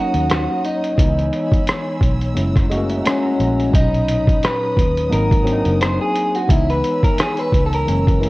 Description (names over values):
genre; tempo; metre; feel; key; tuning
lo-fi hip hop; 87 BPM; 4/4; swing 56% on 16ths; unclear; A4 = 439 Hz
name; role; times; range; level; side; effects
electric guitar through a small old amp; melody; 0.0-8.3 s; C#4 to B#4; -21 LUFS; equal; none
barky tine electric piano; accompaniment; 0.0-8.3 s; A#2 to A#5; -22 LUFS; left 1 dB; medium stereo tremolo
dark studio string section; sustained chords; 0.0-8.3 s; B#4 to E6; -32 LUFS; equal; none
vintage muted fingered electric bass; bass; 0.1-8.3 s; F#1 to D#2; -20 LUFS; equal; none
lo-fi sampler-style drum kit; drums; 0.1-8.3 s; hi-hat, kick drum, rim click; -18 LUFS; equal; none
room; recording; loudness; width
light reverb, digital ambience; worn, warbling old tape, cassette tape, warbly pitch drift; -15 LUFS; side -20 dB against mid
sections
0.0-8.3 A section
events
none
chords
0.0 D#m7; 1.0 C#m7; 2.4 F#7; 3.7 Bmaj9; 5.1 G#7; 6.5 C#m7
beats
0.29 | 0.98 1.67 2.36 3.05 | 3.74 4.43 5.12 5.81 | 6.50 7.18 7.88